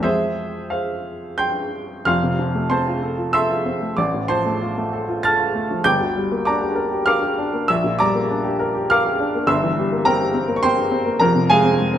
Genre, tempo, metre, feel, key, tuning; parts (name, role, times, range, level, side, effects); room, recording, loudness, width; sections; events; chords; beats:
classical, romantic character piece for solo piano; 88-108 BPM; 3/4; rubato; F major; A4 = 440 Hz
warm upright piano; solo; 0.0-12.0 s; F1 to A6; -17 LUFS; equal
moderate recital hall reverb, RT60 1.7 s; -17 LUFS; side -10 dB against mid
0.0-2.1 A section; 2.1-12.0 B section
0.0 Fm; 2.1 F; 4.0 F/A; 5.8 Gm; 7.7 Gm/Bb; 9.5 C7/G; 11.2 Fm
| 0.03 0.71 1.39 | 2.06 2.71 3.34 | 3.97 4.61 5.23 | 5.84 6.45 7.06 | 7.68 8.29 8.89 | 9.48 10.04 10.62 | 11.20 11.79